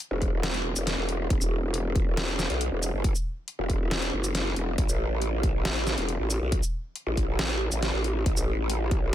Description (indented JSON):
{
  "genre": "heavy wobble dubstep",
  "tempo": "138 BPM",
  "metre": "4/4",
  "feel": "half-time",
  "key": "unclear",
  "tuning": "A4 = 440 Hz",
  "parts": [
    { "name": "dubstep drum kit", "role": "drums", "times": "0.0-9.0 s", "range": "hi-hat, shaker, snare drum", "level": "-30 LUFS", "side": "equal", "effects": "none" },
    { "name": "growl bass", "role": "bass", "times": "0.1-9.1 s", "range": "E1 to B1", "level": "-27 LUFS", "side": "equal", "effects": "chorus, overdrive" },
    { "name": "electronic kick drum", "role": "drums", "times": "0.2-9.0 s", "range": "none", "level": "-27 LUFS", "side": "equal", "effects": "none" }
  ],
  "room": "little or no reverb",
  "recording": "none",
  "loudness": "-25 LUFS",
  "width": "side -12 dB against mid",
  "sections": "0.0-9.1 A section",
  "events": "none",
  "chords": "none",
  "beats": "0.00 0.43 0.87 | 1.30 1.74 2.17 2.61 | 3.04 3.48 3.91 4.35 | 4.78 5.22 5.65 6.09 | 6.52 6.96 7.39 7.83 | 8.26 8.70 9.13"
}